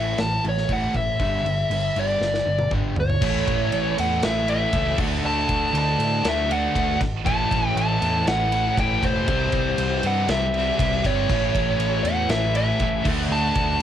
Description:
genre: hard rock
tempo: 119 BPM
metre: 4/4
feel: straight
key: unclear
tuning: A4 = 441 Hz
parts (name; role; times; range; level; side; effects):
- dark smooth lead guitar; melody; 0.0-13.8 s; C5 to A5; -24 LUFS; equal; overdrive
- crunchy overdriven guitar; riff; 0.0-13.8 s; G2 to D4; -29 LUFS; right 7 dB; cassette tape
- overdriven semi-hollow guitar; riff; 0.0-13.8 s; G2 to D4; -30 LUFS; left 7 dB; cassette tape
- picked electric bass; bass; 0.0-13.8 s; E1 to A2; -27 LUFS; equal; none
- big rock drum kit; drums; 0.2-13.7 s; crash cymbal, kick drum, ride cymbal, snare drum, toms; -27 LUFS; equal; cassette tape
- high-gain distorted guitar; riff; 3.2-13.8 s; A2 to F#4; -29 LUFS; left 2 dB; distortion, cassette tape
room: light reverb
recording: home recording on cassette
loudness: -20 LUFS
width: side -10 dB against mid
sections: 0.0-3.2 A section; 3.2-13.8 B section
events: drum fill 2.2-3.2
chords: 0.0 A5; 1.2 G5; 3.2 A; 5.0 D; 7.3 A; 9.3 C; 11.3 A; 13.1 D

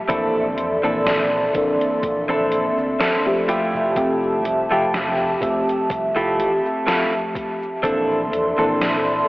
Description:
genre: vaporwave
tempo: 62 BPM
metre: 4/4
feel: swing 54% on 16ths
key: F major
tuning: A4 = 440 Hz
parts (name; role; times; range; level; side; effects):
- FM electric piano with soft pad layer; accompaniment; 0.0-9.2 s; E3 to E5; -22 LUFS; equal; phaser, wide subtle chorus, analog delay
- warbly tape-like pad; sustained chords; 0.0-9.3 s; G4 to C6; -23 LUFS; equal; chorus, built-in reverb
- direct-recorded clean electric guitar; riff; 0.1-9.2 s; A3 to A4; -24 LUFS; equal; wide subtle chorus, vintage 12-bit sampler grit, analog delay
- slap bass with an envelope filter; bass; 0.1-9.2 s; F1 to F2; -35 LUFS; equal; none
- electronic kick drum; drums; 0.1-8.0 s; none; -31 LUFS; equal; none
- gated 80s digital drum machine; drums; 0.1-9.3 s; cabasa, hi-hat, snare drum; -26 LUFS; equal; gated reverb, gated reverb snare
room: wet huge ambient reverb, RT60 3.8 s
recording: dreamy mix soaked in reverb, cassette tape, telephone sound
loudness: -18 LUFS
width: side -19 dB against mid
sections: 0.0-9.3 A section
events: none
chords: 0.1 Bbmaj9#11; 3.5 Fmaj9; 7.8 Bbmaj9#11

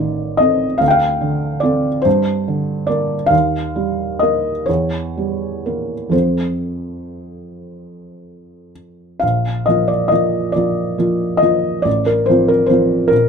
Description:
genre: classical, romantic nocturne for solo piano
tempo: 36-50 BPM (dotted quarters)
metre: 12/8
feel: rubato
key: Bb major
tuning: A4 = 439 Hz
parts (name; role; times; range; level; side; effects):
- felt-muted upright piano; solo; 0.0-13.3 s; A1 to G5; -15 LUFS; equal; none
room: light reverb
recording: dark, warm production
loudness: -14 LUFS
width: side -6 dB against mid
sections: 0.0-9.2 A section; 9.2-13.3 A section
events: none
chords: 0.0 Adim; 0.8 Dm7; 2.1 Gm; 3.3 Eb; 4.7 Edim7; 6.1 F; 9.2 Bb; 11.9 F/A

